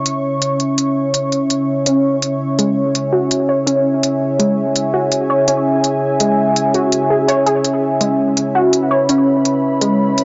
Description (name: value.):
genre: half-time drum and bass.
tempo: 166 BPM.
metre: 4/4.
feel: swing 59% on 16ths, half-time.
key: C# minor.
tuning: A4 = 438 Hz.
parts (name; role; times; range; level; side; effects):
dark analog pad; sustained chords; 0.0-10.2 s; C#4 to C#6; -18 LUFS; equal; chorus.
electronic hi-hat; drums; 0.1-10.2 s; none; -21 LUFS; equal; none.
warbly dusty pluck; arpeggios; 1.9-10.2 s; G#3 to C#5; -19 LUFS; equal; analog chorus, analog delay.
room: light reverb.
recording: dry, gritty hardware recording, nothing above 7.5 kHz.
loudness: -16 LUFS.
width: mono.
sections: 0.0-10.2 A section.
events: filter sweep on analog synth pad 0.0-10.2.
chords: 0.0 C#m.